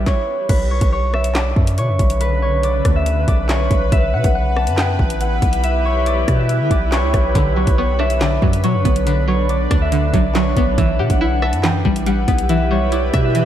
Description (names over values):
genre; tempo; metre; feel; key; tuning
hip hop, drill; 140 BPM; 4/4; half-time; B minor; A4 = 440 Hz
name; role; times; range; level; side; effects
concert harp; melody; 0.0-13.4 s; B4 to A5; -22 LUFS; equal; low-pass filter, diffuse ambient delay
string-like resonator pluck; accompaniment; 0.0-0.5, 7.4-13.4 s; D3 to E5; -21 LUFS; equal; chorus, phaser, low-pass filter
granular cloud pad; sustained chords; 0.0-13.4 s; C#3 to B4; -24 LUFS; equal; built-in reverb, lush chorus
long sustained 808-style bass; bass; 0.0-13.4 s; A1 to D3; -19 LUFS; equal; none
drill drum kit; drums; 0.1-13.4 s; crash cymbal, handclaps, hi-hat, kick drum, rim click, snare drum; -19 LUFS; equal; none
room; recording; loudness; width
moderate lush hall reverb, RT60 2.0 s, digital ambience; dreamy mix soaked in reverb; -14 LUFS; side -11 dB against mid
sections
0.5-13.4 A section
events
stop 0.1-0.5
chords
0.5 Bmadd9; 3.9 Em; 7.3 Bm; 10.8 Em